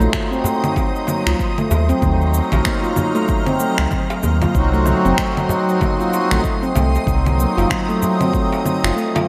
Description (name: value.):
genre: organic downtempo.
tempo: 95 BPM.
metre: 4/4.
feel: swing 59% on 16ths.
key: unclear.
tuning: A4 = 441 Hz.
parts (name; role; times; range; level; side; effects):
hand-pumped harmonium; accompaniment; 0.0-8.9 s; Gb3 to Gb4; -25 LUFS; equal; sidechain pumping, digital delay, shimmer reverb.
granular cloud pad; sustained chords; 0.0-9.3 s; Gb3 to F6; -27 LUFS; equal; built-in reverb, sidechain pumping, shimmer reverb.
handpan; arpeggios; 0.0-9.3 s; A3 to F4; -24 LUFS; equal; digital delay, shimmer reverb.
round analog bass; bass; 0.0-8.9 s; Gb1 to Eb2; -20 LUFS; equal; none.
electronic shaker, finger snaps and congas; drums; 0.0-9.3 s; none; -26 LUFS; equal; gated reverb.
wind-like tuned noise texture; texture; 0.0-9.3 s; C5 to C6; -34 LUFS; equal; none.
electronic kick drum; drums; 0.1-8.5 s; none; -25 LUFS; equal; none.
darbuka; percussion; 0.4-9.3 s; none; -30 LUFS; equal; none.
room: moderate lush hall reverb, RT60 2.2 s.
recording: bright 1980s-style digital production.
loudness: -18 LUFS.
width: mono.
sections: 0.0-9.3 A section.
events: none.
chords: 0.0 Ebm; 4.5 Cdim.